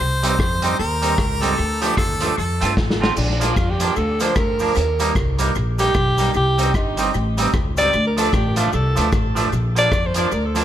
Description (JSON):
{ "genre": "ska", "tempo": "151 BPM", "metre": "4/4", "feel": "swing 60% on 8ths", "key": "Bb major", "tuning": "A4 = 440 Hz", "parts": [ { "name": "bright harmonica", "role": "melody", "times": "0.0-2.7 s", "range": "G4 to C5", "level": "-24 LUFS", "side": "equal", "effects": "tape echo" }, { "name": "upright bass", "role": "bass", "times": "0.0-10.6 s", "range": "G1 to G2", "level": "-22 LUFS", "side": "left 1 dB", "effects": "none" }, { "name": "clean electric guitar", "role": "accompaniment", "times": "0.2-10.6 s", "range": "F3 to F4", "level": "-23 LUFS", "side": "right 3 dB", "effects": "tape echo" }, { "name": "vintage drum kit", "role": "drums", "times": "0.2-10.6 s", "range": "crash cymbal, hi-hat, kick drum, rim click, snare drum", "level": "-23 LUFS", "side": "equal", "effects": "tape echo" }, { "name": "bright alto saxophone", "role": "melody", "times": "3.2-10.6 s", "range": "D4 to D5", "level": "-22 LUFS", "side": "equal", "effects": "tape echo" }, { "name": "cabasa", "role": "percussion", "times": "3.2-10.6 s", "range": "none", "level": "-38 LUFS", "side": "left 8 dB", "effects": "none" } ], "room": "light reverb, studio ambience", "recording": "none", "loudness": "-16 LUFS", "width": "side -11 dB against mid", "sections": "0.0-3.2 A section; 3.2-10.6 B section", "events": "drum fill 2.8-3.2; alto saxophone solo 3.2-10.6", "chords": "0.0 Cm; 1.6 Dm; 2.4 F; 3.2 Bb; 4.8 Eb; 6.3 Cm; 7.9 Dm; 9.5 Bb", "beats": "0.39 0.79 1.18 | 1.58 1.98 2.37 2.77 | 3.17 3.57 3.96 4.36 | 4.76 5.15 5.55 5.95 | 6.35 6.74 7.14 7.54 | 7.93 8.33 8.73 9.12 | 9.52 9.92 10.31" }